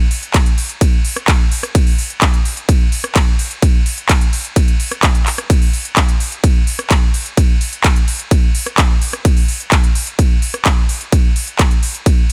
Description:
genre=EDM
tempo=128 BPM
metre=4/4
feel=straight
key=none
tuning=none
part: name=big-room dance drum kit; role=drums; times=0.1-12.3 s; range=handclaps, hi-hat, ride cymbal, rim click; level=-21 LUFS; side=equal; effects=none
part: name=electronic kick drum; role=drums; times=0.3-12.2 s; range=none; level=-14 LUFS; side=equal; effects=none
room=digital ambience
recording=none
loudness=-15 LUFS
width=mono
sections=0.0-12.3 A section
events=none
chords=none

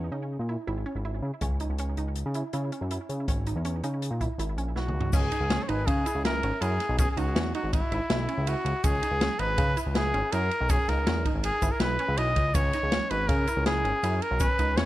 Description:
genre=progressive instrumental, band music in an uneven meter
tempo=162 BPM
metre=5/4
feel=straight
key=C# dorian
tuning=A4 = 441 Hz
part: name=resonant blip pluck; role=arpeggios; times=0.0-14.9 s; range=C#4 to E4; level=-36 LUFS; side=right 4 dB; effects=chorus, dub echo
part: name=fat analog bass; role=bass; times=0.0-14.9 s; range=G#1 to C#3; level=-29 LUFS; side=equal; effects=none
part: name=open jazz drum kit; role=drums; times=1.4-14.9 s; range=crash cymbal, hi-hat, kick drum, ride cymbal, snare drum, toms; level=-29 LUFS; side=equal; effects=none
part: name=mellow trumpet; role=melody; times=4.8-14.9 s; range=E4 to D#5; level=-28 LUFS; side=equal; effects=dub echo
part: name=egg shaker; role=percussion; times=5.1-14.7 s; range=none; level=-44 LUFS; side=left 14 dB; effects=none
room=light reverb, studio ambience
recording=echo-heavy mix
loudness=-25 LUFS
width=side -15 dB against mid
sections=0.0-5.1 A section; 5.1-14.9 B section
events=drum fill 4.8-5.1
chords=0.0 C#m; 5.1 C#m7

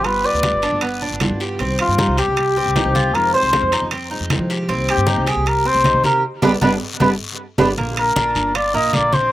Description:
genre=latin, Cuban son and guajira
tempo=155 BPM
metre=4/4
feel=straight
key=C minor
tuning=A4 = 440 Hz
part: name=trumpet with cup mute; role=melody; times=0.0-9.3 s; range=F4 to Eb5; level=-18 LUFS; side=left 1 dB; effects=none
part: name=fingerpicked steel-string acoustic guitar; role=accompaniment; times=0.0-9.3 s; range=C3 to G4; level=-26 LUFS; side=left 2 dB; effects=slapback echo
part: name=Cuban tres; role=arpeggios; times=0.0-9.3 s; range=Bb3 to C5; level=-23 LUFS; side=right 3 dB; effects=slapback echo
part: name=upright bass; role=bass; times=0.0-9.3 s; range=G1 to F3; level=-24 LUFS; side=equal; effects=none
part: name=congas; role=percussion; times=0.0-9.3 s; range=none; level=-22 LUFS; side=left 1 dB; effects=none
part: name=guiro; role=percussion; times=0.0-9.3 s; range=none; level=-29 LUFS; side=left 4 dB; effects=none
part: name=timbales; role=percussion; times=0.0-9.1 s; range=none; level=-25 LUFS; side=right 5 dB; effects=slapback echo
room=little or no reverb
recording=recorded outdoors, with no room sound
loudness=-15 LUFS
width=side -14 dB against mid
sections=0.0-7.8 A section; 7.8-9.3 B section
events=band accent 6.2-7.8; drum fill 7.0-7.8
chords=0.0 G7; 1.6 Cm; 3.1 Fm7; 4.7 Cm7; 6.2 G; 7.8 Bb

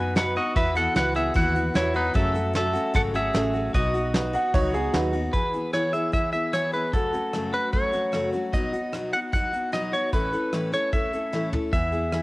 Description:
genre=honky-tonk and classic country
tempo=150 BPM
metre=4/4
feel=straight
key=E major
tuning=A4 = 440 Hz
part: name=pedal steel guitar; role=melody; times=0.0-12.2 s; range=D#4 to G#5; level=-26 LUFS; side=equal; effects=none
part: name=picked steel-string acoustic guitar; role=accompaniment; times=0.0-12.2 s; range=F#2 to A4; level=-28 LUFS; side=left 2 dB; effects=none
part: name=vintage muted fingered electric bass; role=bass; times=0.0-5.3, 11.7-12.2 s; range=G#1 to F#2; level=-29 LUFS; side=equal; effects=none
part: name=dark grand piano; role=accompaniment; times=0.2-5.2 s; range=C#4 to B4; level=-32 LUFS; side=right 2 dB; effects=none
part: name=soft brush drum kit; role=drums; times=0.2-12.2 s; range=hi-hat, kick drum, rim click, snare drum, toms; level=-26 LUFS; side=equal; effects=cassette tape
part: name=clear upright piano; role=second line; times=4.3-5.1 s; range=F#4 to F#5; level=-27 LUFS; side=right 2 dB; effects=none
room=moderate spring reverb, RT60 2.3 s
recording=home recording on cassette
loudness=-22 LUFS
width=side -21 dB against mid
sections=0.0-5.3 A section; 5.3-12.2 B section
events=drum fill 11.3-11.7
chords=0.0 B; 0.6 Esus2; 2.1 F#m; 3.7 B; 5.3 E; 6.9 F#m; 8.5 B; 10.1 A

